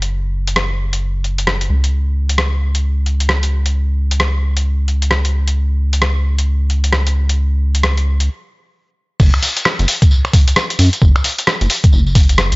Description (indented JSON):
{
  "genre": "UK garage, two-step garage",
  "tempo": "132 BPM",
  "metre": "4/4",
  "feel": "swing 62% on 16ths",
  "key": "unclear",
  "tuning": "A4 = 440 Hz",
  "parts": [
    { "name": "rubbery square bass", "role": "bass", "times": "0.0-12.6 s", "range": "F#1 to F#2", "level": "-15 LUFS", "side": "equal", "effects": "none" },
    { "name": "boom bap sampler-style drum kit", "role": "drums", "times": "0.0-12.6 s", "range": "crash cymbal, finger snaps, hi-hat, rim click, tambourine", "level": "-18 LUFS", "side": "equal", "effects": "none" },
    { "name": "electronic kick drum", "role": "drums", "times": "9.2-12.3 s", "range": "none", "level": "-10 LUFS", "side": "equal", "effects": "none" }
  ],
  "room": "digital ambience",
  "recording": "dry, gritty hardware recording, nothing above 7.6 kHz",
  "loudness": "-13 LUFS",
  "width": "side -24 dB against mid",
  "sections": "0.0-9.2 A section; 9.2-12.6 B section",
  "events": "stop 8.3-9.2; drop 9.2-12.6",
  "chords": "none",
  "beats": "| 0.11 0.56 1.02 1.47 | 1.93 2.38 2.83 3.29 | 3.74 4.20 4.65 5.11 | 5.56 6.02 6.47 6.93 | 7.38 7.83 8.29 8.74 | 9.20 9.65 10.11 10.56 | 11.02 11.47 11.93 12.38"
}